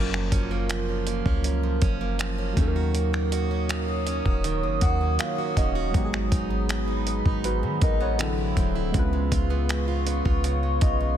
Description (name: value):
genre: contemporary R&B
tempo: 80 BPM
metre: 4/4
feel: straight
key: F# major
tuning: A4 = 439 Hz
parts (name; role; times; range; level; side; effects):
- muted felt-like synth keys; accompaniment; 0.0-11.2 s; F#3 to F#5; -29 LUFS; equal; chorus
- deep dark ambient pad; sustained chords; 0.0-11.2 s; G#4 to E#6; -32 LUFS; equal; chorus, built-in reverb
- picked plugged-in steel-string acoustic guitar; arpeggios; 0.0-11.2 s; F#2 to F#4; -32 LUFS; right 8 dB; ping-pong delay
- clean 808-style bass; bass; 0.0-11.2 s; D1 to D#3; -27 LUFS; equal; none
- dusty soul sampler-style drum kit; drums; 0.1-11.0 s; finger snaps, hi-hat, kick drum; -26 LUFS; equal; overdrive, soft clipping on snare
room: little or no reverb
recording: dense, heavily limited modern master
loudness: -22 LUFS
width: side -10 dB against mid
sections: 0.0-11.2 A section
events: synth keys fill 4.4-5.9, 10.4-11.2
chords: 0.0 F#maj7; 2.6 D#m7; 5.9 G#m7; 8.2 D9; 8.9 C#7